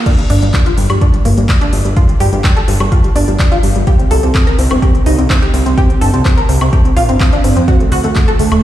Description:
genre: progressive house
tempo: 126 BPM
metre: 4/4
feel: straight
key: G minor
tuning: A4 = 440 Hz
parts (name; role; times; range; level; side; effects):
- analog pluck; arpeggios; 0.0-8.6 s; G3 to Bb4; -15 LUFS; right 1 dB; wide subtle chorus, sidechain pumping, dub echo
- deep house drum kit; drums; 0.1-8.6 s; crash cymbal, handclaps, hi-hat, woodblock; -21 LUFS; equal; studio reverb
- electronic kick drum; drums; 0.1-8.3 s; none; -11 LUFS; equal; studio reverb
- fat analog bass; bass; 0.3-8.6 s; D1 to G2; -13 LUFS; equal; sidechain pumping
room: light reverb, digital ambience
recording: played on a big sound system in a bare room, large studio reverb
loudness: -9 LUFS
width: side -13 dB against mid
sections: 0.0-8.6 A section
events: none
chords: 0.1 G7(no3); 3.9 C5; 7.7 D5

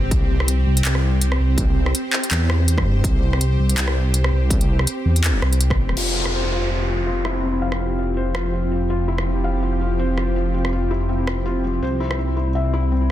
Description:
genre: half-time drum and bass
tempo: 164 BPM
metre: 4/4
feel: swing 56% on 16ths, half-time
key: unclear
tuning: A4 = 440 Hz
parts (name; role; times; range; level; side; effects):
- bowed-like drone; sustained chords; 0.0-13.1 s; C3 to C5; -26 LUFS; right 1 dB; built-in reverb, sidechain pumping
- dark detuned saw bass; bass; 0.0-13.1 s; F1 to G2; -20 LUFS; equal; none
- electronic kick drum; drums; 0.1-5.8 s; none; -20 LUFS; equal; distortion
- industrial drum kit; drums; 0.1-12.2 s; crash cymbal, handclaps, hi-hat, rim click; -25 LUFS; equal; soft clipping on snare
- felt-muted upright piano; arpeggios; 6.0-13.1 s; F3 to F5; -26 LUFS; left 4 dB; low-pass filter, digital delay
- downlifter; sound effects; 6.0-8.9 s; none; -27 LUFS; equal; none
room: little or no reverb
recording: dense, heavily limited modern master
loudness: -18 LUFS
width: side -13 dB against mid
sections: 0.0-6.0 A section; 6.0-13.1 B section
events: drop 0.0-6.0; filter sweep on felt piano 6.0-13.1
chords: 0.1 C; 6.0 F5; 11.8 C

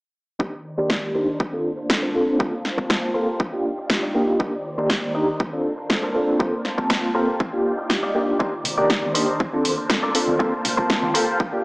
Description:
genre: filtered disco house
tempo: 120 BPM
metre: 4/4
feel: straight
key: C dorian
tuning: A4 = 440 Hz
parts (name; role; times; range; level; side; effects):
- bright reed electric piano; accompaniment; 0.4-11.6 s; Eb3 to A5; -23 LUFS; equal; overdrive, fast tremolo, phaser, sidechain pumping, low-pass filter
- phased string machine; sustained chords; 0.7-11.6 s; Eb3 to Bb5; -29 LUFS; equal; ensemble chorus, phaser, vintage 12-bit sampler grit, sidechain pumping, low-pass filter
- direct-recorded clean electric guitar; riff; 0.4-11.4 s; D4 to Eb5; -28 LUFS; equal; sidechain pumping, low-pass filter
- electronic kick drum; drums; 0.4-11.5 s; none; -26 LUFS; equal; overdrive, high-pass filter on kick, high-pass filter on room
- punchy analog drum machine; drums; 0.9-11.3 s; hi-hat, snare drum; -24 LUFS; equal; overdrive, sidechain pumping on hats
- tube shaker and congas; percussion; 8.4-11.5 s; none; -34 LUFS; equal; sidechain pumping on perc, low-pass filter on perc
room: moderate echo chamber reverb, RT60 2.0 s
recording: small speaker sound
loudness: -19 LUFS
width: side -25 dB against mid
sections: 0.4-11.6 A section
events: filter sweep 0.4-11.6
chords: 0.4 Cm9; 1.4 Bbmaj9; 2.4 Gm11; 3.4 Ebmaj9; 4.4 Cm9; 5.4 Bbmaj9; 6.4 Gm11; 7.4 Ebmaj9; 8.4 Cm9; 9.4 Bbmaj9; 10.4 Gm11

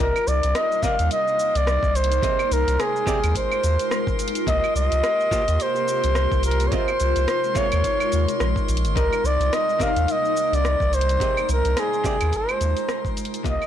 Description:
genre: sunset chillout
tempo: 107 BPM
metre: 4/4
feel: swing 58% on 16ths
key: C minor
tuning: A4 = 443 Hz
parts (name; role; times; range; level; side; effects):
- mellow flugelhorn; melody; 0.0-13.7 s; Ab4 to F5; -22 LUFS; equal; ping-pong delay
- archtop guitar, miked and amplified; accompaniment; 0.0-13.6 s; C3 to Eb5; -32 LUFS; moving between left 8 dB and right 5 dB; auto-pan, digital delay
- ethereal airy pad; sustained chords; 0.0-13.7 s; C3 to G4; -30 LUFS; left 2 dB; ensemble chorus, built-in reverb, phaser
- warm sub bass; bass; 0.0-13.6 s; G1 to Eb2; -22 LUFS; equal; none
- drifting glass-harmonics texture; texture; 0.7-13.7 s; Bb4 to C6; -34 LUFS; left 1 dB; chorus, built-in reverb
- smooth R&B drum kit; drums; 0.2-13.7 s; cabasa, claves, hi-hat, rim click; -30 LUFS; right 1 dB; studio reverb
- electronic kick drum; drums; 0.8-13.6 s; none; -28 LUFS; equal; studio reverb
room: light reverb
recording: blown-out, overdriven recording, overdrive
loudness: -19 LUFS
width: side -10 dB against mid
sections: 0.0-13.7 A section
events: fade-out 12.0-13.7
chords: 0.0 Cm7; 2.2 Fm7/C; 4.2 Eb69/C; 6.7 Dbmaj7/C; 9.0 Cm7; 11.2 Fm7/C

